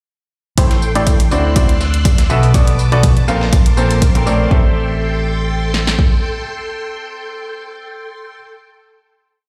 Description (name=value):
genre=piano house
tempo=122 BPM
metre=4/4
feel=swing 54% on 16ths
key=A dorian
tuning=A4 = 440 Hz
part: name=string machine, violins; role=sustained chords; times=0.6-8.3 s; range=A4 to F#6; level=-27 LUFS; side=equal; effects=ensemble chorus, sidechain pumping
part: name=bright baby grand piano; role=riff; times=0.6-8.3 s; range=A2 to G5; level=-21 LUFS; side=equal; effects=sidechain pumping, low-pass filter, delay
part: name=fingered electric bass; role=bass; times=0.6-5.9 s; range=A1 to D2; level=-19 LUFS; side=equal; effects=tube saturation, sidechain pumping
part: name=dusty soul sampler-style drum kit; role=drums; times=0.6-4.4 s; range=hi-hat, snare drum, tambourine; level=-30 LUFS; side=equal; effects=overdrive, sidechain pumping on perc, high-pass filter on perc, high-pass filter on snare, sidechain pumping on hats, high-pass filter on hats
part: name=electronic hi-hat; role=drums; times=0.6-4.2 s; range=none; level=-25 LUFS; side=equal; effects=none
part: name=punchy analog drum machine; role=drums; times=0.6-6.1 s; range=kick drum, snare drum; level=-16 LUFS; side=equal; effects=none
room=digital ambience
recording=played on a big sound system in a bare room, stone room reverb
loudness=-14 LUFS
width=mono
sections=0.6-4.5 breakdown; 4.5-8.4 final chord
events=none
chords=0.6 Am7; 1.3 D9; 2.3 Bm7; 3.3 Bbmaj9; 4.5 Am7